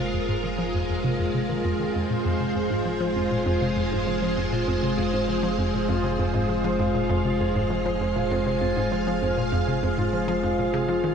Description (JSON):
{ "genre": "ambient, sequencer-driven space music", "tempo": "99 BPM", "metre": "4/4", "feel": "straight", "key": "F minor", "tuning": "A4 = 443 Hz", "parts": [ { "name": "string machine, full ensemble", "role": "sustained chords", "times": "0.0-11.1 s", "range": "Ab3 to F5", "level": "-26 LUFS", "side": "left 1 dB", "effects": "ensemble chorus, shimmer reverb" }, { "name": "concert harp", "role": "arpeggios", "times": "0.0-11.1 s", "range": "C4 to F5", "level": "-30 LUFS", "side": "moving between left 2 dB and right 5 dB", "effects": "auto-pan, ping-pong delay, shimmer reverb" }, { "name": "hollow square pluck", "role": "riff", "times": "0.0-11.1 s", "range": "F2 to F3", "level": "-27 LUFS", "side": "equal", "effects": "chorus, ping-pong delay" }, { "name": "warm sub bass", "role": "bass", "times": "0.0-11.1 s", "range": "F1", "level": "-35 LUFS", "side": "equal", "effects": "none" }, { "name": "wind-like tuned noise texture", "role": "texture", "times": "0.0-11.1 s", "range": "Ab4", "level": "-34 LUFS", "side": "right 5 dB", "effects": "built-in reverb, shimmer reverb" } ], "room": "wet huge ambient reverb, RT60 8.2 s", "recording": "none", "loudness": "-22 LUFS", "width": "side -7 dB against mid", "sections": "0.0-11.1 A section", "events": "fade-in on harp 0.0-11.1; filter sweep on synth arpeggio sound 0.0-11.1", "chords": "0.0 Fm" }